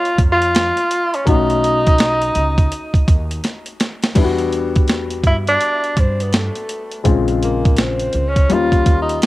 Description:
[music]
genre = hip hop, jazz-hop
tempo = 83 BPM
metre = 4/4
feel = swing 63% on 16ths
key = unclear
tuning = A4 = 440 Hz
[part]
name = mellow tenor saxophone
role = melody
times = 0.0-9.3 s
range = A3 to E#4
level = -18 LUFS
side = equal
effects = cassette tape, tape echo
[part]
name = dark grand piano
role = accompaniment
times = 0.0-9.3 s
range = C#3 to F#4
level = -21 LUFS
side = left 5 dB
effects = cassette tape
[part]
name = boom bap sampler-style drum kit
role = drums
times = 0.1-9.3 s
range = crash cymbal, hi-hat, kick drum, snare drum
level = -16 LUFS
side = right 1 dB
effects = none
[part]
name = upright bass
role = bass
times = 0.2-9.2 s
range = A#1 to G2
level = -22 LUFS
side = right 1 dB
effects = none
[sound]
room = light reverb, studio ambience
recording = home recording on cassette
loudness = -14 LUFS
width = side -17 dB against mid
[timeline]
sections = 0.0-4.2 A section; 4.2-9.3 B section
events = drum fill 3.4-4.2; tenor saxophone solo 4.2-9.3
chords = 0.0 C#6 (rootless); 1.3 B7; 4.2 Em9; 7.1 A#m7; 8.5 D#9

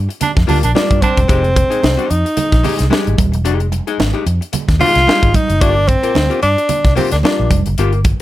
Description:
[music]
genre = funk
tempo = 111 BPM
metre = 4/4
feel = swing 56% on 16ths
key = F dorian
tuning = A4 = 440 Hz
[part]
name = vintage muted fingered electric bass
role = bass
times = 0.0-8.1 s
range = Eb1 to G2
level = -16 LUFS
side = equal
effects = none
[part]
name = archtop guitar, miked and amplified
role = accompaniment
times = 0.1-8.1 s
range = Ab3 to Bb4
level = -21 LUFS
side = left 8 dB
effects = none
[part]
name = crisp fusion drum kit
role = drums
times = 0.1-8.2 s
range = hi-hat, kick drum, snare drum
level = -16 LUFS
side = equal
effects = none
[part]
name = breathy baritone saxophone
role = second line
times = 0.2-1.2 s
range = D4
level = -18 LUFS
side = right 5 dB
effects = none
[part]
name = congas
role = percussion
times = 0.2-8.2 s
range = none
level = -23 LUFS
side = right 7 dB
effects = none
[part]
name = breathy tenor saxophone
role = melody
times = 0.8-7.6 s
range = C4 to F4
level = -15 LUFS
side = equal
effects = none
[sound]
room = light reverb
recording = none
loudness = -11 LUFS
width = side -15 dB against mid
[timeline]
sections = 0.0-8.2 A section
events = band accent 0.0-1.3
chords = 0.0 Gm7; 1.3 Fm9; 5.6 Gm7

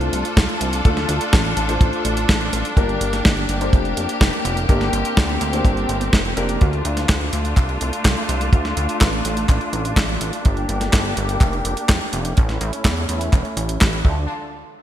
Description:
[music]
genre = italo disco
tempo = 125 BPM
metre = 4/4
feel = straight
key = D minor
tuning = A4 = 440 Hz
[part]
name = clear studio string section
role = sustained chords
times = 0.0-14.3 s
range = D3 to A5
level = -24 LUFS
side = equal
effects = low-pass filter
[part]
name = warm concert grand piano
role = stabs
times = 0.0-6.6 s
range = A3 to C5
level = -26 LUFS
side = left 2 dB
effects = wide subtle chorus, ping-pong delay
[part]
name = chorused synth bass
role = bass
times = 0.0-14.3 s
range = E1 to E2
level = -24 LUFS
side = equal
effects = none
[part]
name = clean 12-bit digital drum machine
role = drums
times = 0.0-14.0 s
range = handclaps, hi-hat, snare drum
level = -23 LUFS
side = equal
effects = none
[part]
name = kick drum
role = drums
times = 0.4-14.1 s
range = none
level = -16 LUFS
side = equal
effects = none
[sound]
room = light reverb, studio ambience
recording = bright 1980s-style digital production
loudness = -17 LUFS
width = side -11 dB against mid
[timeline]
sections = 0.0-14.3 A section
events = filter sweep on string section 0.0-14.3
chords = 0.0 Dm; 2.8 Gm; 6.6 Dm; 10.4 Gm; 12.4 A; 14.0 Dm; 14.3 N.C.

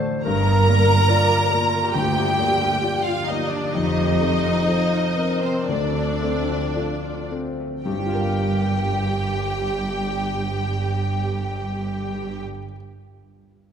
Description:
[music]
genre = cinematic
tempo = 54-72 BPM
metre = 4/4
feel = rubato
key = G minor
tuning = A4 = 440 Hz
[part]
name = warm clarinet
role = second line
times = 0.0-7.3 s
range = F4 to D5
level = -29 LUFS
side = left 1 dB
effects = none
[part]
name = warm baby grand piano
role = accompaniment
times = 0.0-13.7 s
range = D2 to F5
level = -27 LUFS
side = left 2 dB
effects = none
[part]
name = concert harp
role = arpeggios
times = 0.0-12.8 s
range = F2 to A5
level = -29 LUFS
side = left 5 dB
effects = none
[part]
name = rich symphonic viola section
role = accompaniment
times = 0.2-12.4 s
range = C4 to Bb4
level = -28 LUFS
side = right 1 dB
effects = none
[part]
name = rich studio violin section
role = melody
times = 0.3-12.4 s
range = C5 to Bb5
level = -26 LUFS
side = left 1 dB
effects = none
[part]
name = rich studio violin section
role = second line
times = 0.3-12.4 s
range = G4 to Bb5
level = -30 LUFS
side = equal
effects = none
[part]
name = rich studio cello section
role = bass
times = 0.3-12.4 s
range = D2 to G2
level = -27 LUFS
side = right 2 dB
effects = none
[part]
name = rich studio double bass section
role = bass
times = 0.3-12.4 s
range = F1 to D2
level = -28 LUFS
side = right 3 dB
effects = none
[sound]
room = wet concert hall reverb, RT60 2.0 s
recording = minimal, uncompressed stereo recording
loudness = -19 LUFS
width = side -8 dB against mid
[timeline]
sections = 0.0-7.9 A section; 7.9-12.0 B section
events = slowing down 0.0-7.9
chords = 0.3 Gm7; 3.7 F7; 5.7 Dm7; 7.9 Gm7

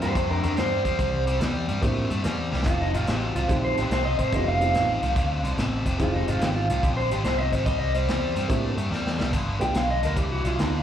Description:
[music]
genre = electric blues shuffle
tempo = 144 BPM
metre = 4/4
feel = swing 67% on 8ths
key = C mixolydian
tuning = A4 = 441 Hz
[part]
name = electric guitar through a small old amp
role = melody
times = 0.0-10.8 s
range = Bb3 to G5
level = -27 LUFS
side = right 1 dB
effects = slapback echo
[part]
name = dark upright piano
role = accompaniment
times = 0.0-9.7 s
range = Ab3 to G4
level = -30 LUFS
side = right 3 dB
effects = slapback echo
[part]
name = overdriven electric guitar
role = riff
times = 0.0-10.8 s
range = F2 to A3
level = -29 LUFS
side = left 2 dB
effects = slapback echo
[part]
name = fingered electric bass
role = bass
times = 0.0-10.8 s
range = F1 to A2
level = -27 LUFS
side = equal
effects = none
[part]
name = vintage drum kit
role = drums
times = 0.0-10.7 s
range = hi-hat, kick drum, snare drum, splash cymbal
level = -29 LUFS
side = equal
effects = none
[sound]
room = small room ambience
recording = live gig heard through the venue's PA, club reverb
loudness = -22 LUFS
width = side -10 dB against mid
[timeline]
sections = 0.0-10.8 A section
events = clean electric guitar solo 0.0-10.8; drum fill 2.4, 8.9-9.3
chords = 0.0 C9; 2.7 F9; 6.0 Fm7; 7.7 C9; 9.3 G

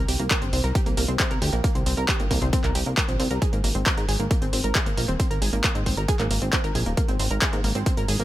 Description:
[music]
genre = uplifting trance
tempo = 135 BPM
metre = 4/4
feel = straight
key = unclear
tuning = A4 = 439 Hz
[part]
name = analog pluck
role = arpeggios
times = 0.0-8.2 s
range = Bb3 to Bb4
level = -29 LUFS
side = right 2 dB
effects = wide subtle chorus, sidechain pumping, digital delay
[part]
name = plucky analog bass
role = bass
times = 0.0-8.2 s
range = Eb1 to Ab2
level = -26 LUFS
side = equal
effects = sidechain pumping
[part]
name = punchy analog drum machine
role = drums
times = 0.1-8.2 s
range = handclaps, hi-hat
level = -27 LUFS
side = equal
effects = none
[part]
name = electronic kick drum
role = drums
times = 0.3-8.0 s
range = none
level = -24 LUFS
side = equal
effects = overdrive
[sound]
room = little or no reverb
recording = none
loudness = -21 LUFS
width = side -15 dB against mid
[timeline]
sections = 0.0-8.2 A section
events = none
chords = 0.0 C5; 3.4 Abadd9

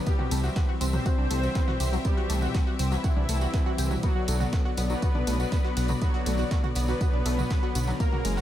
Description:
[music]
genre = melodic techno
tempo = 121 BPM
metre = 4/4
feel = straight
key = B phrygian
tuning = A4 = 440 Hz
[part]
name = rich studio string section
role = sustained chords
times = 0.0-8.4 s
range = F#3 to E5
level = -38 LUFS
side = left 4 dB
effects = sidechain pumping
[part]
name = brassy analog pad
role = stabs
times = 0.0-8.4 s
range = C#3 to C4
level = -34 LUFS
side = left 3 dB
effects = chorus, sidechain pumping, dub echo
[part]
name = soft supersaw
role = melody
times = 0.1-8.3 s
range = E3 to C5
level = -34 LUFS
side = equal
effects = analog delay
[part]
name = tight sequenced synth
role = arpeggios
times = 0.1-8.4 s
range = F#3 to G5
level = -35 LUFS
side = right 1 dB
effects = chorus, sidechain pumping, dub echo
[part]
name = breakbeat sampler-style drum kit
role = drums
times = 0.1-8.4 s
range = hi-hat, snare drum, tambourine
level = -45 LUFS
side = equal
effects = none
[part]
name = electronic kick drum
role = drums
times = 0.1-8.1 s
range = none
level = -26 LUFS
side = equal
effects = none
[part]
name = punchy analog drum machine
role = drums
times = 0.1-8.3 s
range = hi-hat, ride cymbal, toms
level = -37 LUFS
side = left 1 dB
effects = overdrive, sidechain pumping on toms, sidechain pumping on cymbals, sidechain pumping on hats
[part]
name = tambourine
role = percussion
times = 0.1-8.4 s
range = none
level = -42 LUFS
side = right 5 dB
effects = none
[part]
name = dark detuned saw bass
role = bass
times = 0.3-8.4 s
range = F#1 to C2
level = -27 LUFS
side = equal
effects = sidechain pumping
[sound]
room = light reverb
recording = echo-heavy mix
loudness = -24 LUFS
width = side -12 dB against mid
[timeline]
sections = 0.0-8.4 A section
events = none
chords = 0.1 C; 4.0 Bm

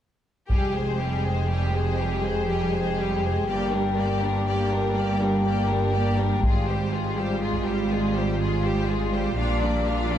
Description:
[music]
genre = cinematic, epic orchestral film score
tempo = 81 BPM (dotted quarters)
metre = 12/8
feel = straight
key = F dorian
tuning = A4 = 440 Hz
[part]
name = clear symphonic violin section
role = melody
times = 0.5-10.2 s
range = Ab4 to F5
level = -34 LUFS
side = left 5 dB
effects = none
[part]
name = clear symphonic violin section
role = second line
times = 0.5-10.2 s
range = D4 to Ab4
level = -32 LUFS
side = left 3 dB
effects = none
[part]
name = rich studio viola section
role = accompaniment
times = 0.5-10.2 s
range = G3 to D4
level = -31 LUFS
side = right 1 dB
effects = none
[part]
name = mellow French horn section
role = sustained chords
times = 0.5-10.2 s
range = F3 to G4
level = -28 LUFS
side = left 2 dB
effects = none
[part]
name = rich symphonic cello section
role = bass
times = 0.5-10.2 s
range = F2 to Bb2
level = -28 LUFS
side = right 2 dB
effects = none
[part]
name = rich symphonic double bass section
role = bass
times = 0.5-10.2 s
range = F1 to Bb1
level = -28 LUFS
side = right 1 dB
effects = none
[part]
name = taiko ensemble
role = drums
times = 0.5-1.5, 6.4-7.8 s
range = none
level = -25 LUFS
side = equal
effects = none
[sound]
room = moderate scoring stage reverb, RT60 1.6 s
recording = dark, warm production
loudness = -22 LUFS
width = side -10 dB against mid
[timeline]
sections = 0.5-10.2 A section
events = build-up 0.5-10.2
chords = 0.5 Fmadd9; 3.5 Gm; 6.4 Fmadd9/Ab; 9.4 Bb

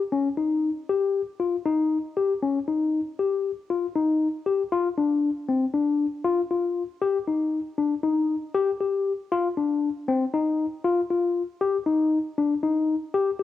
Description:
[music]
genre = contemporary instrumental, contemporary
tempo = 235 BPM (eighths)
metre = 9/8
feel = straight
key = Eb major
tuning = A4 = 440 Hz
[part]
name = tine electric piano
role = solo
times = 0.1-13.4 s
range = C4 to G4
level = -22 LUFS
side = left 4 dB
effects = cassette tape
[sound]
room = moderate spring reverb, RT60 1.6 s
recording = home recording on cassette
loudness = -22 LUFS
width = side -12 dB against mid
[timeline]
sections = 0.0-4.7 A section; 4.7-13.4 B section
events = none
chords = none

